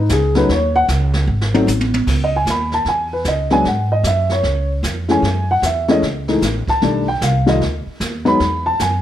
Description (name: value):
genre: jazz piano trio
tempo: 152 BPM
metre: 4/4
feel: swing 64% on 8ths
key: C# minor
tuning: A4 = 442 Hz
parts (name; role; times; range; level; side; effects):
- dark upright piano; melody; 0.0-9.0 s; D#3 to B5; -16 LUFS; left 1 dB; plate reverb
- upright bass; bass; 0.0-9.0 s; G#1 to G#2; -19 LUFS; right 1 dB; none
- jazz brush drum kit; drums; 0.1-9.0 s; brushed snare drum, crash cymbal, hi-hat, kick drum, snare drum, toms; -24 LUFS; right 2 dB; none
room: light reverb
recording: none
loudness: -14 LUFS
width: side -11 dB against mid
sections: 0.0-2.1 A section; 2.1-9.0 A section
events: upright piano solo 0.0-9.0; drum fill 1.3-2.1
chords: 0.5 C#sus2; 1.3 G#5; 2.1 C#m9; 3.6 Eadd9; 4.4 C#; 5.2 F#m9; 6.8 B7alt; 8.4 Eadd9